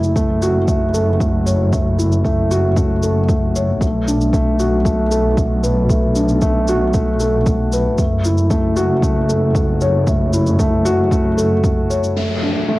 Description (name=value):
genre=piano and strings electronica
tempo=115 BPM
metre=4/4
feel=straight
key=B minor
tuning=A4 = 438 Hz
part: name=felt-muted upright piano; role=riff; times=0.0-12.8 s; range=A3 to C#5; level=-17 LUFS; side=equal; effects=cassette tape, analog delay
part: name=warm studio double bass section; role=bass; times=0.0-12.1 s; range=F#1 to B1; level=-18 LUFS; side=equal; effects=sidechain pumping
part: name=shaker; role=drums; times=0.0-12.1 s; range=none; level=-31 LUFS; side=left 1 dB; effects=studio reverb
part: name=electronic kick drum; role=drums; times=0.2-11.7 s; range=none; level=-19 LUFS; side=equal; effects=studio reverb
part: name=downlifter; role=sound effects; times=12.2-12.8 s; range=none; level=-22 LUFS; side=left 1 dB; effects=none
room=light reverb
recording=home recording on cassette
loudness=-14 LUFS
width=side -18 dB against mid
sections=0.0-12.2 A section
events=none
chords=0.0 F#m7; 3.8 Bm7; 8.0 F#m7; 12.2 Bm7 (rootless)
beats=0.16 0.69 1.21 | 1.73 2.25 2.77 3.29 | 3.82 4.34 4.86 5.38 | 5.90 6.42 6.95 7.47 | 7.99 8.51 9.03 9.55 | 10.08 10.60 11.12 11.64 | 12.16 12.69